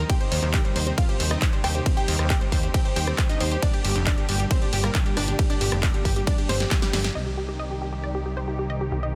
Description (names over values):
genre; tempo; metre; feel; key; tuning
uplifting trance; 136 BPM; 4/4; straight; C minor; A4 = 440 Hz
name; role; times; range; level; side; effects
unison pluck; melody; 0.0-9.1 s; G3 to G5; -33 LUFS; equal; sidechain pumping, tape echo
dark grand piano; second line; 0.0-7.1 s; G4 to G5; -41 LUFS; equal; none
muted studio string section; sustained chords; 0.0-9.2 s; Bb2 to G4; -35 LUFS; equal; sidechain pumping, low-pass filter
analog pluck; arpeggios; 0.0-7.1 s; D3 to C5; -37 LUFS; equal; chorus, sidechain pumping, tape echo
plucky analog bass; bass; 0.0-9.2 s; F1 to Eb2; -29 LUFS; equal; tube saturation, sidechain pumping
electronic kick drum; drums; 0.1-6.8 s; none; -25 LUFS; equal; none
punchy analog drum machine; drums; 0.1-7.1 s; handclaps, hi-hat, ride cymbal, rim click, snare drum; -32 LUFS; equal; low-pass filter on hats, low-pass filter on cymbals, low-pass filter on snare, low-pass filter on room
room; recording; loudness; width
little or no reverb; dense, heavily limited modern master; -24 LUFS; mono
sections
0.0-7.2 A section; 7.2-9.2 B section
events
drop 0.0-7.2; drum fill 6.5-7.2; band accent 7.0; filter sweep on string section 7.2-9.2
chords
0.1 Cm/Eb; 3.6 Gm; 7.2 Cm